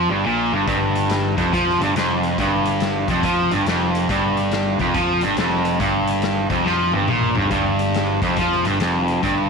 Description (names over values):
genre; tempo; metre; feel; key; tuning
blues rock power trio and southern rock; 140 BPM; 4/4; swing 64% on 8ths; G minor; A4 = 440 Hz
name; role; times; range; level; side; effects
cranked stack guitar; riff; 0.0-9.5 s; F2 to F3; -18 LUFS; right 1 dB; overdrive
fuzz picked electric bass; bass; 0.0-9.5 s; F1 to F2; -27 LUFS; equal; overdrive, tube saturation
raw garage drum kit; drums; 0.7-9.4 s; hi-hat, kick drum, snare drum, toms; -27 LUFS; left 5 dB; none
room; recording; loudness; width
light reverb, small room ambience; 1960s-style stereo; -17 LUFS; side -4 dB against mid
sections
0.0-9.5 A section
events
drum fill 6.7-7.5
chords
none